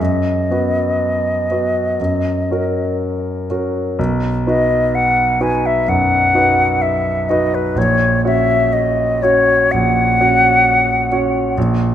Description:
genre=classical, romantic duo for flute and grand piano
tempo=59-65 BPM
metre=4/4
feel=rubato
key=B major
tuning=A4 = 440 Hz
part: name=concert flute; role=melody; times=0.0-11.6 s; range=B4 to G#5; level=-15 LUFS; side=left 2 dB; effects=none
part: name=clear concert grand piano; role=accompaniment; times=0.0-11.9 s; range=A#1 to C#5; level=-17 LUFS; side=right 1 dB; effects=none
room=light reverb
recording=close, detailed microphones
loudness=-13 LUFS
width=side -10 dB against mid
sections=0.0-4.0 A section; 4.0-11.9 A section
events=none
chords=0.0 B/F#; 2.0 F#; 4.0 B; 7.8 F#/A#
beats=0.99 1.99 2.99 | 3.98 4.93 5.87 6.81 | 7.76 8.72 9.71 10.64 | 11.56

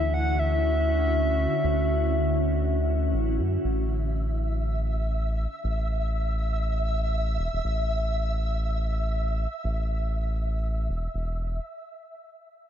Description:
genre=IDM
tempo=120 BPM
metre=4/4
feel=swing 56% on 16ths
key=A major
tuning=A4 = 439 Hz
part: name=warbly nostalgic lead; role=melody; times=0.0-3.1 s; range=E5 to F#5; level=-29 LUFS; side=left 2 dB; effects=chorus, tape echo
part: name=glassy FM pad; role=sustained chords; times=0.0-3.6 s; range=D3 to F#4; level=-28 LUFS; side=equal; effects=ensemble chorus, built-in reverb, vintage 12-bit sampler grit
part: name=round analog bass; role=bass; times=0.0-11.6 s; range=E1 to F#2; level=-26 LUFS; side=equal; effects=none
part: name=flickering grainy texture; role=texture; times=3.9-11.7 s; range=E5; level=-34 LUFS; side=equal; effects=built-in reverb
room=light reverb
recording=none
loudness=-24 LUFS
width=side -10 dB against mid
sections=0.0-3.6 A section; 3.6-11.6 B section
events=none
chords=0.0 Dmaj9; 3.6 A5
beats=0.14 0.64 1.14 | 1.64 2.14 2.64 3.14 | 3.64 4.14 4.64 5.14 | 5.64 6.14 6.64 7.14 | 7.64 8.14 8.64 9.14 | 9.64 10.14 10.64 11.14

